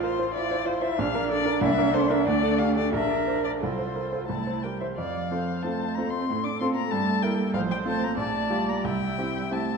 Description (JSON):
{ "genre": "quick classical-period movement for piano quartet", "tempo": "87-96 BPM", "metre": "2/4", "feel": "rubato", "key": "F major", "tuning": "A4 = 440 Hz", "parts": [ { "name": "muted violin", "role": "melody", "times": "0.0-9.8 s", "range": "C5 to D6", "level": "-29 LUFS", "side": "left 10 dB", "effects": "none" }, { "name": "muted cello", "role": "second line", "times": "0.0-9.8 s", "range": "E3 to Bb4", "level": "-28 LUFS", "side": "right 6 dB", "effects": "none" }, { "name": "clear grand piano", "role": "accompaniment", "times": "0.0-9.8 s", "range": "A1 to D5", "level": "-28 LUFS", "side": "equal", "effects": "none" }, { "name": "muted viola", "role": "accompaniment", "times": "0.0-9.8 s", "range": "A3 to E5", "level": "-33 LUFS", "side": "right 2 dB", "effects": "none" } ], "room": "wet scoring stage reverb, RT60 1.6 s", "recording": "dark, warm production", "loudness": "-23 LUFS", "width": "side -5 dB against mid", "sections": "0.0-5.0 A section; 5.0-9.8 B section", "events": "none", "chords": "0.0 F/A; 1.0 Bb; 1.6 C7; 2.3 D5; 2.9 Bb; 3.6 F/C; 4.3 C; 5.0 F; 6.3 F/A; 6.9 Edim/G; 7.5 F/A; 8.2 Gm7/Bb; 8.8 C", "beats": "0.35 | 0.99 1.64 | 2.28 2.93 | 3.60 4.29 | 4.97 5.63 | 6.28 6.91 | 7.54 8.18 | 8.85 9.53" }